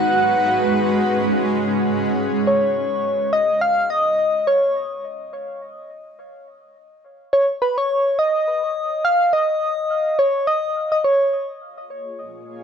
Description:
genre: IDM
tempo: 105 BPM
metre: 4/4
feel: swing 56% on 16ths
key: unclear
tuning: A4 = 440 Hz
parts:
  - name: soft struck synth lead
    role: melody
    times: 0.0-11.5 s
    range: Cb5 to Gb5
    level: -18 LUFS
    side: equal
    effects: chorus, analog delay
  - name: granular cloud pad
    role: sustained chords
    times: 0.0-2.4, 12.0-12.6 s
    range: Ab3 to Db5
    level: -21 LUFS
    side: right 1 dB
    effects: built-in reverb, vintage 12-bit sampler grit
room: light reverb, digital ambience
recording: dry, gritty hardware recording, nothing above 10.5 kHz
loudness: -17 LUFS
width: side -7 dB against mid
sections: 0.0-2.5 A section; 2.5-12.6 B section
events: none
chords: 0.2 Db7sus4/Ab; 2.5 N.C.; 11.6 Bbm7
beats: | 0.19 0.76 1.33 1.90 | 2.47 3.04 3.62 4.19 | 4.76 5.33 5.90 6.47 | 7.04 7.62 8.19 8.76 | 9.33 9.90 10.47 11.04 | 11.62 12.19

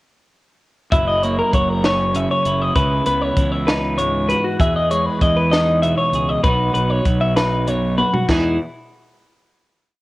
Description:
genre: math rock and midwest emo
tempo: 65 BPM (dotted quarters)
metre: 6/8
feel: straight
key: E lydian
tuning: A4 = 439 Hz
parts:
  - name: twelve-string electric guitar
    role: accompaniment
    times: 0.9-8.6 s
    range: E2 to G#4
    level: -21 LUFS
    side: right 3 dB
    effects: cassette tape
  - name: clean electric guitar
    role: arpeggios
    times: 0.9-8.6 s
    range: E4 to E5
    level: -19 LUFS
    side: left 2 dB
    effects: cassette tape
  - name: fuzz fingered electric bass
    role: bass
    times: 0.9-8.6 s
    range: F#1 to E2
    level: -23 LUFS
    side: equal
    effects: overdrive
  - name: compact cocktail drum kit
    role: drums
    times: 0.9-8.4 s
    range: crash cymbal, hi-hat, kick drum, snare drum, toms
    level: -20 LUFS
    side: equal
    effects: cassette tape
room: light reverb, small room ambience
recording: home recording on cassette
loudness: -15 LUFS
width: side -18 dB against mid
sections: 0.9-8.3 A section; 8.3-10.0 final chord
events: drum fill 8.0-8.3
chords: 0.9 F#7; 2.8 C#m9; 4.6 Emaj7; 6.4 Badd9; 8.3 Emaj7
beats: | 0.92 1.83 | 2.75 3.67 | 4.59 5.52 | 6.44 7.36 | 8.28

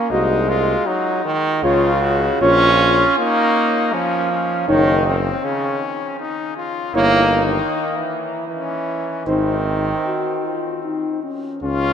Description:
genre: classical, brass quintet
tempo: 79 BPM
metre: 3/4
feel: straight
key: unclear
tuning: A4 = 440 Hz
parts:
  - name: clear trumpet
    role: melody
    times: 0.0-11.9 s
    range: C4 to Gb4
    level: -24 LUFS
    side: left 6 dB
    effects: none
  - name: brilliant trombone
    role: accompaniment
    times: 0.0-11.9 s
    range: Db3 to Db4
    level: -19 LUFS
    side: right 2 dB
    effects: none
  - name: mellow flugelhorn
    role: second line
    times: 0.1-11.9 s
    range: Ab4 to Eb5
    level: -27 LUFS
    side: right 3 dB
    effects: none
  - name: mellow French horn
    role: accompaniment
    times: 0.1-11.9 s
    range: Db4 to Gb4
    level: -25 LUFS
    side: left 4 dB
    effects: none
  - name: bright bass trombone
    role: bass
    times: 0.1-11.9 s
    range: Gb1 to Db2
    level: -21 LUFS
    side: equal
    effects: none
room: wet cathedral reverb, RT60 5.5 s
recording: in a vast, echoing space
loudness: -16 LUFS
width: side -8 dB against mid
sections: 0.0-11.6 A section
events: none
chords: 0.1 Ab7/C; 1.6 Db; 2.4 Bbm; 4.7 Ebm7/Gb; 7.0 Eb7b9/G; 9.3 Ab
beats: | 0.11 0.88 1.64 | 2.42 3.19 3.94 | 4.69 5.44 6.20 | 6.95 7.71 8.48 | 9.27 10.06 10.84 | 11.63

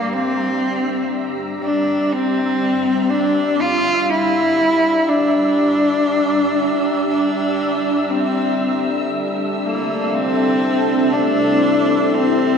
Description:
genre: ambient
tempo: free time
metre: none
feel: none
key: G dorian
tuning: A4 = 440 Hz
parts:
  - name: rich cello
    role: melody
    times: 0.0-12.6 s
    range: Bb3 to F4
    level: -17 LUFS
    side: equal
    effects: analog delay
  - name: granular cloud pad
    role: sustained chords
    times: 0.0-12.6 s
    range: G3 to Bb5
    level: -23 LUFS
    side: left 1 dB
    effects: built-in reverb
  - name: analog drone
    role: drone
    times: 0.3-12.6 s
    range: G3 to D4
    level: -28 LUFS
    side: left 1 dB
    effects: chorus
  - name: wind-like tuned noise texture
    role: texture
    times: 0.0-12.6 s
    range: E5 to E6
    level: -30 LUFS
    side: right 1 dB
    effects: built-in reverb, ensemble chorus
room: wet plate reverb, RT60 3.7 s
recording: dreamy mix soaked in reverb, cassette tape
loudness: -15 LUFS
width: side -6 dB against mid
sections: 0.0-12.6 A section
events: fade-in on ambient pad 0.0-12.6; fade-in on synth drone 0.0-12.6; fade-in on synth texture 0.0-12.6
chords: 0.0 Gm; 8.1 Am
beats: free time

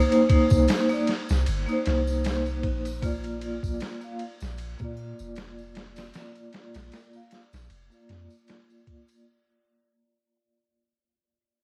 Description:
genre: trip hop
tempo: 77 BPM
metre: 4/4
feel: swing 55% on 16ths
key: unclear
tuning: A4 = 441 Hz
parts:
  - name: vibraphone with hard mallets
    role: accompaniment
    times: 0.0-9.2 s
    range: Bb3 to F5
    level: -28 LUFS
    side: equal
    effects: tremolo, vintage 12-bit sampler grit, low-pass filter, tape echo
  - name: boom bap sampler-style drum kit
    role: drums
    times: 0.1-9.2 s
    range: kick drum, ride cymbal, snare drum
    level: -29 LUFS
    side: equal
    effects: small room ambience, cassette tape
  - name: tambourine and triangle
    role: percussion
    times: 0.1-9.2 s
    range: none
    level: -49 LUFS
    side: equal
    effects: none
  - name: soft 808-style bass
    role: bass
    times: 0.5-8.3 s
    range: F1 to Bb2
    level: -31 LUFS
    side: equal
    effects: none
room: light reverb, small room reverb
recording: home recording on cassette, vinyl crackle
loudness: -25 LUFS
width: mono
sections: 0.0-9.3 A section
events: fade-out 0.0-9.3; filter sweep on vibraphone 0.0-9.3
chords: 0.0 Cm7; 3.0 Bb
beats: 0.68 1.46 2.24 | 3.02 3.80 4.58 5.36 | 6.14 6.92 7.70 8.48

